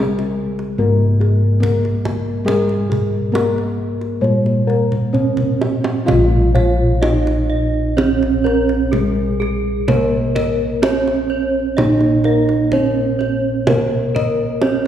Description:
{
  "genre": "Javanese gamelan",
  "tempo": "64 BPM",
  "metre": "4/4",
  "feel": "uneven beats",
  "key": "Bb slendro",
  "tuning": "A4 = 440 Hz",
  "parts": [
    { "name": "gamelan-type bronze metallophone", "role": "melody", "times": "0.0-14.9 s", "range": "Ab3-25c to F4", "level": "-20 LUFS", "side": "right 3 dB", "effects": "none" },
    { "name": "gamelan-type bossed gongs", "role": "arpeggios", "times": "0.0-14.9 s", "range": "Ab4-25c to Eb5", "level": "-22 LUFS", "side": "left 3 dB", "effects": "none" },
    { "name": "gamelan-type bossed gongs", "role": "bass", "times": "0.0-14.9 s", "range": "Bb1 to Bb4", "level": "-19 LUFS", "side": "equal", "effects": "none" },
    { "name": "kendang", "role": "percussion", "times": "0.2-14.8 s", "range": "none", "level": "-22 LUFS", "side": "right 1 dB", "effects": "none" },
    { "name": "gamelan-type bronze metallophone", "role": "arpeggios", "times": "6.1-14.9 s", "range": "Ab4-25c to F5", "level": "-24 LUFS", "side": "equal", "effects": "none" }
  ],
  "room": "wet scoring stage reverb, RT60 2.1 s",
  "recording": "recorded in a church or concert hall",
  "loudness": "-14 LUFS",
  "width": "side -10 dB against mid",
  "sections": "0.0-6.1 A section; 6.1-14.9 B section",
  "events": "drum fill 4.9-6.1",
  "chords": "none"
}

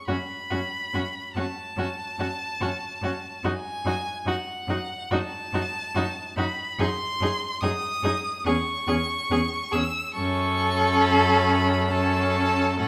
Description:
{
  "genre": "classical, slow romantic movement for string quartet",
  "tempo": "72 BPM",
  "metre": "4/4",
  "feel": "rubato",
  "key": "F# minor",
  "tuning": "A4 = 439 Hz",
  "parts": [
    { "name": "clear violin", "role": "melody", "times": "0.0-12.9 s", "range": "F#5 to E6", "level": "-32 LUFS", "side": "equal", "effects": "none" },
    { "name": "warm violin", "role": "second line", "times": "0.1-12.9 s", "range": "F#4 to A4", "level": "-29 LUFS", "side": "equal", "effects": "none" },
    { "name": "rich viola", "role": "accompaniment", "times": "0.1-12.9 s", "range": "C#4 to D#4", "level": "-32 LUFS", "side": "equal", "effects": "none" },
    { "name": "clear cello", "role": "bass", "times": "0.1-12.9 s", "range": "E2 to A2", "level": "-31 LUFS", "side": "equal", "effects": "none" }
  ],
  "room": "moderate recital hall reverb, RT60 1.5 s",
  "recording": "none",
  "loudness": "-26 LUFS",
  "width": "mono",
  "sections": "0.0-12.9 A section",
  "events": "none",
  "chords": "0.1 F#m; 3.4 D#dim/F#; 8.5 C#m/E; 10.2 F#m"
}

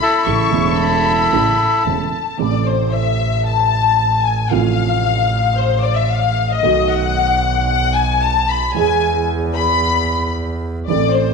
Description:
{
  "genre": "tango",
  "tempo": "113 BPM",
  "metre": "4/4",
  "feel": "rubato",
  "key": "A harmonic minor",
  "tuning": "A4 = 444 Hz",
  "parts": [
    { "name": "bandoneon", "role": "melody", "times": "0.0-1.8 s", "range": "E4 to A4", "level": "-16 LUFS", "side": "left 1 dB", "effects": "none" },
    { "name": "warm studio violin section", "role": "second line", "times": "0.0-11.3 s", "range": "C5 to C#6", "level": "-17 LUFS", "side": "left 6 dB", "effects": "none" },
    { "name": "dark concert grand piano", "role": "accompaniment", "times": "0.3-11.3 s", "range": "E1 to A4", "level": "-21 LUFS", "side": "right 10 dB", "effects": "none" },
    { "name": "clear double bass", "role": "bass", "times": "0.3-11.3 s", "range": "E1 to E2", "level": "-20 LUFS", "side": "right 1 dB", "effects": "none" }
  ],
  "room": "wet echo chamber reverb, RT60 1.7 s, small room reverb",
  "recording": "1960s-style stereo with parts hard left and right",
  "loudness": "-14 LUFS",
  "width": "side -4 dB against mid",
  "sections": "0.0-2.4 A section; 2.4-11.3 B section",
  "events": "violin section solo 2.4-11.3",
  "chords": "0.3 A; 2.4 Am; 4.5 F/A; 6.6 B7; 8.8 E"
}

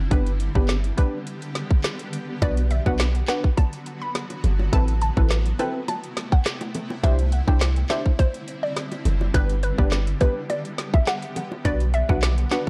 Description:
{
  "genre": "dancehall",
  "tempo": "104 BPM",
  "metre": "4/4",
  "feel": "straight",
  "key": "unclear",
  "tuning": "A4 = 440 Hz",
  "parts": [
    { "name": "granular cloud pad", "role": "sustained chords", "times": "0.0-12.7 s", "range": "C3 to G4", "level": "-37 LUFS", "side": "equal", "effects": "built-in reverb, sidechain pumping" },
    { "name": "warm 808-style bass", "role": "bass", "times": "0.0-12.5 s", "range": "F#1 to C2", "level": "-24 LUFS", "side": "equal", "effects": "none" },
    { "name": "punchy chord stab", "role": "accompaniment", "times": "0.1-12.7 s", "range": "B3 to C5", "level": "-30 LUFS", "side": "equal", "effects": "chorus" },
    { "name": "island pop drum kit", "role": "drums", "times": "0.1-12.7 s", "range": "handclaps, hi-hat, kick drum, rim click, snare drum", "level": "-24 LUFS", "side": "equal", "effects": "overdrive" },
    { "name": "hollow square pluck", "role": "melody", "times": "2.4-12.6 s", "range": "B4 to B5", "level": "-32 LUFS", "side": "equal", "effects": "chorus, delay" },
    { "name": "bongos", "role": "percussion", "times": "2.4-12.7 s", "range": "none", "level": "-36 LUFS", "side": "equal", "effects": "none" }
  ],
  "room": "digital ambience",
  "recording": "dark, warm production",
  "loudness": "-23 LUFS",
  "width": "mono",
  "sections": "0.0-2.4 A section; 2.4-12.7 B section",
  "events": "none",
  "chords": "0.1 G; 2.4 Bm; 4.7 Amadd9; 7.0 Cadd9; 9.3 G; 11.7 Bm"
}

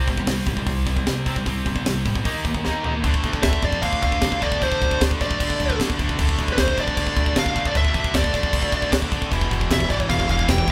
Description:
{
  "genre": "heavy metal",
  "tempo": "153 BPM",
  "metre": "4/4",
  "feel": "straight",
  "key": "unclear",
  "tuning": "A4 = 440 Hz",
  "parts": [
    { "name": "distorted electric guitar", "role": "riff", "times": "0.0-10.7 s", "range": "E2 to D#4", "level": "-31 LUFS", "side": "equal", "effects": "overdrive" },
    { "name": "scooped high-gain guitar", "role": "riff", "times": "0.0-10.7 s", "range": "E2 to D#4", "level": "-32 LUFS", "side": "equal", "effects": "distortion" },
    { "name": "tight distorted guitar", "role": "riff", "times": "0.0-10.7 s", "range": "E2 to D#4", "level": "-33 LUFS", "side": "equal", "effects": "distortion" },
    { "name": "upright bass", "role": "bass", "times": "0.1-10.7 s", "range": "E1 to C3", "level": "-28 LUFS", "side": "equal", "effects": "none" },
    { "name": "tight metal drum kit", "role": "drums", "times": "0.1-10.7 s", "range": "crash cymbal, hi-hat, kick drum, snare drum, toms", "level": "-26 LUFS", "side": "equal", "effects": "none" },
    { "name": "high-gain lead guitar", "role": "melody", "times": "3.4-10.7 s", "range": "B4 to G5", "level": "-26 LUFS", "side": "equal", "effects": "distortion" }
  ],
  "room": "light reverb",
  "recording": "band playing live in one room",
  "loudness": "-22 LUFS",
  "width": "mono",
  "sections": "0.0-3.0 A section; 3.0-10.7 B section",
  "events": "drum fill 2.7-3.0",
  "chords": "0.0 C5; 2.3 D#5; 3.0 D5; 9.3 Em"
}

